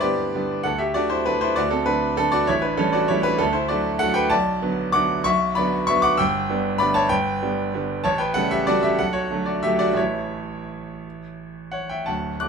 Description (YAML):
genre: classical, piano waltz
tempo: 164-205 BPM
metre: 3/4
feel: rubato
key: unclear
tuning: A4 = 440 Hz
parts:
  - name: bright grand piano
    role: solo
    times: 0.0-12.5 s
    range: D1 to F#6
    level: -20 LUFS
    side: equal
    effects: none
room: light reverb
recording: none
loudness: -19 LUFS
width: side -6 dB against mid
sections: 0.0-12.1 A section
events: none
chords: 0.0 G; 0.7 D; 2.5 A7; 3.4 D; 4.3 Bm7; 6.2 Em7/G; 8.1 A7; 9.0 Bm7; 10.0 A